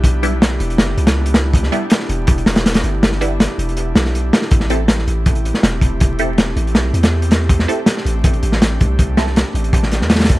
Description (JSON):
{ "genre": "drum and bass, jungle", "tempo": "161 BPM", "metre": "4/4", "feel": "straight", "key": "A minor", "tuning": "A4 = 439 Hz", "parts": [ { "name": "airy breathy pad", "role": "sustained chords", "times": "0.0-10.4 s", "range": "A3 to G4", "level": "-25 LUFS", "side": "equal", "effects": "chorus" }, { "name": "long sustained 808-style bass", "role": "bass", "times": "0.0-10.4 s", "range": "E1 to E2", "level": "-18 LUFS", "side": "equal", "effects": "none" }, { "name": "crunchy breakbeat drum kit", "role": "drums", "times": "0.0-10.4 s", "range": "hi-hat, kick drum, snare drum", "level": "-14 LUFS", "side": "equal", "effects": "none" }, { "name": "filtered dub chord stab", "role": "stabs", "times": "0.2-9.3 s", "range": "G3 to A4", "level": "-24 LUFS", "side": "right 2 dB", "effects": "phaser, dub echo" } ], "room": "little or no reverb", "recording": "vinyl crackle", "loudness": "-13 LUFS", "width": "side -18 dB against mid", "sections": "0.0-10.4 A section", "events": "none", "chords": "0.0 Em7; 4.5 Am7" }